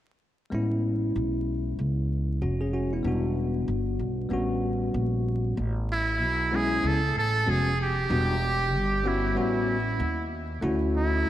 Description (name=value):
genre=hip hop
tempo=95 BPM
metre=4/4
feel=swing 62% on 16ths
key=A major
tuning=A4 = 438 Hz
part: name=bell-like tine electric piano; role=accompaniment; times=0.5-11.3 s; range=G3 to G#4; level=-29 LUFS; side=left 1 dB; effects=fast stereo tremolo
part: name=upright bass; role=bass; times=0.5-11.3 s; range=E1 to D#2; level=-28 LUFS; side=equal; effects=none
part: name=trumpet with metal mute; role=melody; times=5.9-11.3 s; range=E4 to A4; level=-27 LUFS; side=right 2 dB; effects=ping-pong delay
room=moderate lush hall reverb, RT60 2.7 s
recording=dreamy mix soaked in reverb, vinyl crackle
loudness=-24 LUFS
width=side -12 dB against mid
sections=0.5-5.6 A section; 5.6-11.3 B section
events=none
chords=0.5 Amaj9; 3.0 Em7; 4.3 A13; 5.6 Amaj9; 8.1 Em7; 9.4 A13; 10.6 Dmaj9